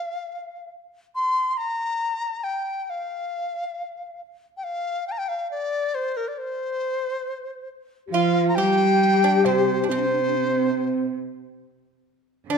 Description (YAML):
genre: chinese traditional, Chinese chamber ensemble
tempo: 69 BPM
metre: 2/4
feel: rubato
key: C shang mode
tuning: A4 = 435 Hz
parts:
  - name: bright reedy large dizi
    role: melody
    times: 0.0-12.6 s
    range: Bb4 to C6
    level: -25 LUFS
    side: left 1 dB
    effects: none
  - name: breathy mellow low xiao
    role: second line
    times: 8.1-12.6 s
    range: C4 to G4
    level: -23 LUFS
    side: left 4 dB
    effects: none
  - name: pipa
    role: second line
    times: 8.1-12.6 s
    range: C4 to G4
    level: -28 LUFS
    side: right 8 dB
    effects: none
  - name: rich cello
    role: second line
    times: 8.1-12.6 s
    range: C3 to G3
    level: -24 LUFS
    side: right 5 dB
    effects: none
room: wet recital hall reverb, RT60 1.5 s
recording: dark, warm production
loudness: -21 LUFS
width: side -6 dB against mid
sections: 0.0-8.1 A section; 8.1-12.6 B section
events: none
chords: none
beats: 0.27 | 1.15 2.03 | 2.92 3.79 | 4.65 5.51 | 6.37 7.24 | 8.13 9.02 | 9.90 10.77 | 11.63 12.49